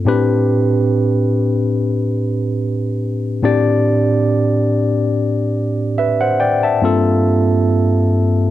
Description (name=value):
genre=R&B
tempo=71 BPM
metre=4/4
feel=swing 54% on 16ths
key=unclear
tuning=A4 = 440 Hz
part: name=barky tine electric piano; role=solo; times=0.0-8.5 s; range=G2 to A5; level=-14 LUFS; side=equal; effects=overdrive, auto-pan
room=light reverb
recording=dry, close 1970s-style studio recording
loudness=-14 LUFS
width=side -13 dB against mid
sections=0.0-6.8 A section; 6.8-8.5 B section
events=none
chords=0.0 Am9; 6.8 Gm9